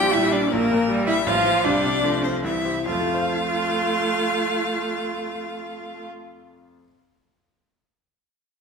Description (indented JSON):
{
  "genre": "quick classical-period movement for piano quartet",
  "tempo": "137-161 BPM",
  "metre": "3/4",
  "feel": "rubato",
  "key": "F major",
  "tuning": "A4 = 439 Hz",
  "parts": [
    { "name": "rich violin", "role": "melody", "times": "0.0-6.1 s", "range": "Bb4 to G5", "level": "-26 LUFS", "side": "left 8 dB", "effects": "none" },
    { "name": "rich cello", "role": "second line", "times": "0.0-6.1 s", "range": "Bb3 to G4", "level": "-23 LUFS", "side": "right 3 dB", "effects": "none" },
    { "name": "bright grand piano", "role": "accompaniment", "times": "0.0-6.9 s", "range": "A1 to F5", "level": "-29 LUFS", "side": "left 3 dB", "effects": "none" },
    { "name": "rich viola", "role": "accompaniment", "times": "0.0-6.1 s", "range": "E3 to Bb3", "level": "-28 LUFS", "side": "right 2 dB", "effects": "none" }
  ],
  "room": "wet scoring stage reverb, RT60 1.7 s",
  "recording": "none",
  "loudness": "-20 LUFS",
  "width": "side -5 dB against mid",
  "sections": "0.0-2.9 A section; 2.9-5.3 B section",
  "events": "slowing down 0.0-2.9",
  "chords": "0.0 Gm/Bb; 0.5 Edim/Bb; 1.3 F/A; 1.6 F/C; 2.4 C; 2.9 F"
}